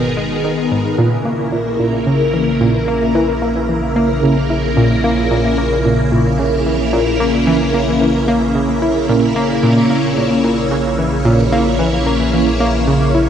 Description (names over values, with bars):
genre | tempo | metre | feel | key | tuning
ambient, sequencer-driven space music | 111 BPM | 4/4 | straight | unclear | A4 = 439 Hz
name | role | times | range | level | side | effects
phased string machine | sustained chords | 0.0-13.3 s | C#3 to C#5 | -15 LUFS | equal | ensemble chorus, phaser
analog pluck | riff | 0.0-13.3 s | G#2 to E4 | -17 LUFS | equal | chorus, tape echo
warm sub bass | bass | 0.0-13.3 s | G#1 to A#1 | -23 LUFS | equal | tube saturation
room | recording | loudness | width
wet lush hall reverb, RT60 2.5 s | dreamy mix soaked in reverb, cassette tape | -13 LUFS | side -8 dB against mid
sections
0.0-13.3 A section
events
fade-in on sub bass 0.0-13.3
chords
0.0 G#m; 1.0 A#dim